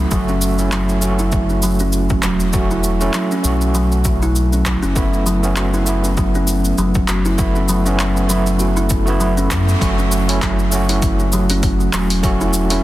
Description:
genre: organic downtempo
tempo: 99 BPM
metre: 4/4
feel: swing 57% on 16ths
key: F# minor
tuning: A4 = 440 Hz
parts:
  - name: overdriven tine electric piano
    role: accompaniment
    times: 0.0-12.8 s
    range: A3 to F#4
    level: -22 LUFS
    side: right 3 dB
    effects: medium tremolo, sidechain pumping, tape echo
  - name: kalimba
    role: arpeggios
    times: 0.0-12.8 s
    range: F#3 to F#4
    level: -20 LUFS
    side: equal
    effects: tape echo
  - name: round analog bass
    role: bass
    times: 0.0-12.8 s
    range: E1 to F#2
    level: -19 LUFS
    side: equal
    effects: sidechain pumping
  - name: deep house drum kit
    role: drums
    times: 0.1-12.8 s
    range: handclaps, hi-hat, shaker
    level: -24 LUFS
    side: equal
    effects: overdrive
  - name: electronic kick drum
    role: drums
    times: 0.1-12.4 s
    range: none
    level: -20 LUFS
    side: equal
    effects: overdrive
room: light reverb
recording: dense, heavily limited modern master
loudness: -14 LUFS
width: side -15 dB against mid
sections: 0.0-9.8 A section; 9.8-12.8 B section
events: band accent 9.5-9.8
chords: 0.1 F#m; 5.0 Asus2/F#; 9.8 F#m

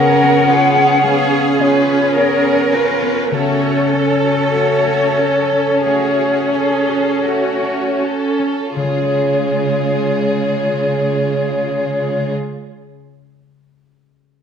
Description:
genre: classical, slow romantic movement for symphony orchestra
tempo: 38-57 BPM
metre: 4/4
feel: rubato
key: Db major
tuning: A4 = 443 Hz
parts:
  - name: clear chamber violin section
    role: melody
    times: 0.0-12.3 s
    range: Ab4 to Db5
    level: -26 LUFS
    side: left 4 dB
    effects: none
  - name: mellow hollow silver concert flute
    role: second line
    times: 0.0-12.3 s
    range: Cb5 to Gb5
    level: -17 LUFS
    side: left 2 dB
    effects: none
  - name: rich chamber violin section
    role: second line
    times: 0.0-12.3 s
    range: A3 to A4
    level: -23 LUFS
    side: right 2 dB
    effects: none
  - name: rich chamber viola section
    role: accompaniment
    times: 0.0-12.3 s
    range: Ab3 to Db4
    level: -20 LUFS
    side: right 2 dB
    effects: none
  - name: concert harp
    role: arpeggios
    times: 0.0-12.7 s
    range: Db3 to Db5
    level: -23 LUFS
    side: left 7 dB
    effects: none
  - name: rich studio cello section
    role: bass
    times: 0.0-12.3 s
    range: Db3 to Bb4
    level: -20 LUFS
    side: right 5 dB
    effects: none
room: moderate scoring stage reverb, RT60 1.5 s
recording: none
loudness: -13 LUFS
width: side -7 dB against mid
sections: 0.0-8.8 A section; 8.8-14.4 B section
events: slowing down 0.0-8.8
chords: 0.0 Db7; 3.3 Gbm/Db; 8.8 Db

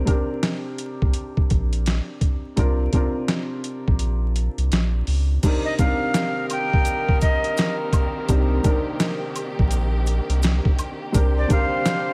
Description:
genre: hip hop, boom-bap hip-hop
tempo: 84 BPM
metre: 4/4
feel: swing 62% on 16ths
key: C minor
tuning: A4 = 439 Hz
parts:
  - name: dark upright piano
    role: accompaniment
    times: 0.0-12.1 s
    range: C3 to Bb4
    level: -30 LUFS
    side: equal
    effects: cassette tape, high-pass filter, low-pass filter
  - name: round analog bass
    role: bass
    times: 0.0-11.5 s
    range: Bb1 to Db2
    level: -23 LUFS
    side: equal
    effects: none
  - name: boom bap sampler-style drum kit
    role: drums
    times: 0.1-12.1 s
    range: crash cymbal, hi-hat, kick drum, snare drum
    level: -24 LUFS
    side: equal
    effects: vintage 12-bit sampler grit
  - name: warm studio string section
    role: sustained chords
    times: 5.4-12.1 s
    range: D3 to G4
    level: -36 LUFS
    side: equal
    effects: high-pass filter, low-pass filter
  - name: mellow horn section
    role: stabs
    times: 5.4-12.1 s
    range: G3 to C5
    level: -33 LUFS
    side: equal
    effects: high-pass filter, low-pass filter, digital delay
  - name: maracas and woodblock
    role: percussion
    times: 5.4-12.1 s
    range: none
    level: -39 LUFS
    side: equal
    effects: none
  - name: breathy bright jazz flute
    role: melody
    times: 5.6-12.1 s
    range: D5 to G5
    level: -27 LUFS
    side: equal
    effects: high-pass filter, low-pass filter
room: small room ambience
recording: vinyl crackle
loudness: -22 LUFS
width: mono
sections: 0.0-5.4 A section; 5.4-12.1 B section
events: kick muted 4.0-5.4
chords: 0.0 Gm/C; 2.6 Bb; 5.4 Cm7; 11.1 Gm/C

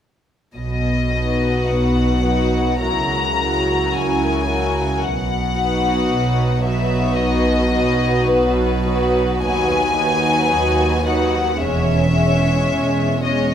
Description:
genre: classical, slow romantic movement for symphony orchestra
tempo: 50-57 BPM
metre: 4/4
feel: rubato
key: B major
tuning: A4 = 440 Hz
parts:
  - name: warm studio violin section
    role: melody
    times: 0.6-13.5 s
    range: B4 to A#5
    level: -22 LUFS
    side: left 5 dB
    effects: none
  - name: dark studio double bass section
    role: bass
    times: 0.6-13.5 s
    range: E1 to D#2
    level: -22 LUFS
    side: right 2 dB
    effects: none
  - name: warm studio cello section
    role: bass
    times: 0.6-13.5 s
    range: D#2 to C#3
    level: -23 LUFS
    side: equal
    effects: none
  - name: dark studio violin section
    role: second line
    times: 1.1-13.5 s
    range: C#4 to C#5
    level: -23 LUFS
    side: equal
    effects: none
  - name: dark studio viola section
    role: accompaniment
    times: 1.1-13.5 s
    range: F#3 to E4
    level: -23 LUFS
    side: right 1 dB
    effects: none
room: moderate scoring stage reverb, RT60 1.6 s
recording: none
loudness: -16 LUFS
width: side -9 dB against mid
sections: 0.6-13.5 A section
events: none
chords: 0.6 B; 2.8 F#7/C#; 5.0 B; 9.4 B/D#; 11.6 C#m/E

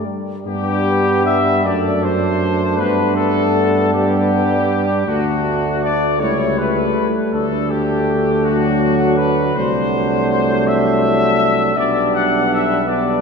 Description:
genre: classical, hymn-like piece for brass band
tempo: 53 BPM (dotted quarters)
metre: 6/8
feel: rubato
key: G major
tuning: A4 = 440 Hz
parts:
  - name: mellow trumpet section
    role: melody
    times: 0.0-13.2 s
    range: F#4 to F#5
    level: -19 LUFS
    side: left 5 dB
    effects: none
  - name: mellow flugelhorn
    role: second line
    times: 0.0-13.2 s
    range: D4 to Bb4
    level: -22 LUFS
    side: right 6 dB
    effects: none
  - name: clear euphonium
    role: accompaniment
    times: 0.0-13.2 s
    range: G3 to B3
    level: -22 LUFS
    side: left 2 dB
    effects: none
  - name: clear trombone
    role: accompaniment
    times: 0.0-13.2 s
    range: F#3 to A3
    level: -24 LUFS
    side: right 2 dB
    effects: none
  - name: warm tuba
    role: bass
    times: 0.0-13.2 s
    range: B1 to G2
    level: -21 LUFS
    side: right 1 dB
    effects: none
room: wet church reverb, RT60 3.5 s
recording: none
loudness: -14 LUFS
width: side -5 dB against mid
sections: 0.5-13.2 A section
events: none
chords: 0.5 G; 1.6 D7/F#; 2.8 G; 5.1 D; 6.2 A7/C#; 7.3 D; 9.5 D7/C; 11.8 G/B

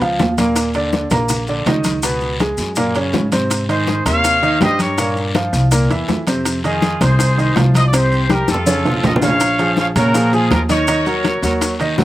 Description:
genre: latin, salsa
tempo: 163 BPM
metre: 4/4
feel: straight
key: Bb minor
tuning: A4 = 440 Hz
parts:
  - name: clear baby grand piano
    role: accompaniment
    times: 0.0-12.0 s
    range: Bb2 to C6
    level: -19 LUFS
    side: right 1 dB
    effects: slapback echo
  - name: upright bass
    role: bass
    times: 0.0-12.0 s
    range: Bb1 to Bb2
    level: -19 LUFS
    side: equal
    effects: none
  - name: bongos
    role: percussion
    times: 0.0-12.0 s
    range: none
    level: -24 LUFS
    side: left 6 dB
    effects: slapback echo
  - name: congas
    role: percussion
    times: 0.0-12.0 s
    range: none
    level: -23 LUFS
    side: left 1 dB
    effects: none
  - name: maracas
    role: percussion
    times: 0.0-12.0 s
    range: none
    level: -28 LUFS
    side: left 3 dB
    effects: none
  - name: timbales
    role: percussion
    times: 0.0-12.0 s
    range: none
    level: -24 LUFS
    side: right 5 dB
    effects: none
  - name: guiro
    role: percussion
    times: 0.2-12.0 s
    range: none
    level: -29 LUFS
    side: left 4 dB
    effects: none
  - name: bright trumpet section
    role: melody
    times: 3.7-11.8 s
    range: F4 to F5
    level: -18 LUFS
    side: equal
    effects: slapback echo
room: little or no reverb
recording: recorded outdoors, with no room sound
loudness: -14 LUFS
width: side -15 dB against mid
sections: 0.0-9.4 A section; 9.4-12.0 B section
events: drum fill 8.3-9.4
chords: 0.0 Dbadd9; 0.6 Eb5; 2.0 Db5; 2.8 Gbadd9; 3.5 Abmaj9; 5.0 Bbm69; 5.7 C7; 6.5 Fm7; 7.9 C5; 8.7 Faug; 9.4 Bbm7; 10.9 Ebm7

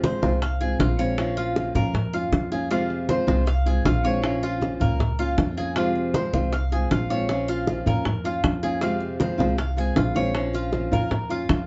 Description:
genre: latin, Cuban son and guajira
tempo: 157 BPM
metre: 4/4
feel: straight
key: F minor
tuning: A4 = 438 Hz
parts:
  - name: flamenco guitar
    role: accompaniment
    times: 0.0-11.7 s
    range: C3 to F4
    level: -29 LUFS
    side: equal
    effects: none
  - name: Cuban tres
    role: arpeggios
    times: 0.0-11.7 s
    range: F4 to F5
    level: -32 LUFS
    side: equal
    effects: none
  - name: upright bass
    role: bass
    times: 0.0-11.7 s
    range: Bb1 to F2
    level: -29 LUFS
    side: equal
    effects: none
  - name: bongos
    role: percussion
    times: 0.0-11.7 s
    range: none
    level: -30 LUFS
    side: equal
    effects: none
  - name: congas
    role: percussion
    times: 0.0-11.7 s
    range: none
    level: -30 LUFS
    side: equal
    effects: none
room: wet small room reverb, RT60 0.5 s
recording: band playing live in one room, nothing above 7.7 kHz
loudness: -24 LUFS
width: mono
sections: 0.0-11.7 A section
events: none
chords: 0.0 Fm; 1.2 Bbm; 2.7 Fm; 4.2 Bbm; 5.8 Fm; 7.3 Bbm; 8.8 Fm; 10.3 Bbm

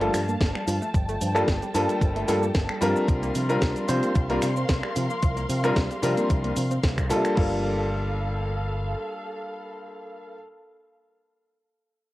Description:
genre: nu-disco, nu disco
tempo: 112 BPM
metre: 4/4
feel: swing 53% on 16ths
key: G minor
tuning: A4 = 440 Hz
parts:
  - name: clear concert grand piano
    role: accompaniment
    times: 0.0-10.4 s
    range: G3 to C5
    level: -26 LUFS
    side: left 1 dB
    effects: sidechain pumping, analog delay
  - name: muted studio string section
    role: sustained chords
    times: 0.0-10.4 s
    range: A4 to C6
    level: -34 LUFS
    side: left 1 dB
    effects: sidechain pumping
  - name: analog pluck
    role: arpeggios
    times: 0.0-7.6 s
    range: F3 to C4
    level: -33 LUFS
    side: right 2 dB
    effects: chorus, phaser, sidechain pumping, analog delay
  - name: fingered electric bass with an envelope filter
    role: bass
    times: 0.0-8.9 s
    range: G1 to C3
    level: -28 LUFS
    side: equal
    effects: none
  - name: house drum kit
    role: drums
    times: 0.0-7.5 s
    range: crash cymbal, finger snaps, hi-hat, shaker, snare drum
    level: -32 LUFS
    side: equal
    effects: cassette tape
  - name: electronic kick drum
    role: drums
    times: 0.4-7.5 s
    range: none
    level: -24 LUFS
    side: equal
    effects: cassette tape
room: light reverb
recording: home recording on cassette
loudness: -22 LUFS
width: side -16 dB against mid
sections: 0.0-7.4 A section; 7.4-11.7 B section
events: drop 0.0-7.4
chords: 0.0 Gm9; 3.1 C7sus4; 7.4 Gm9

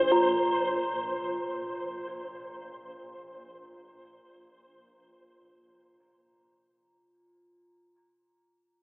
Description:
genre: dark ambient drone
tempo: free time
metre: none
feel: none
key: unclear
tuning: A4 = 441 Hz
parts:
  - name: bronze singing bowl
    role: arpeggios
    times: 0.0-7.9 s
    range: C3 to F4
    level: -28 LUFS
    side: equal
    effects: none
  - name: swarming drone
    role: drone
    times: 0.0-4.8 s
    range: Bb1 to Bb2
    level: -41 LUFS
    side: equal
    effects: built-in reverb
  - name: flickering grainy texture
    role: texture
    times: 0.0-4.7 s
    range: C5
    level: -30 LUFS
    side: equal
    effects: built-in reverb
room: wet echo chamber reverb, RT60 2.5 s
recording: echo-heavy mix, telephone sound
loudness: -27 LUFS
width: side -29 dB against mid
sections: 0.0-4.7 A section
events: fade-out 0.0-4.7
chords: 0.0 F5/Bb

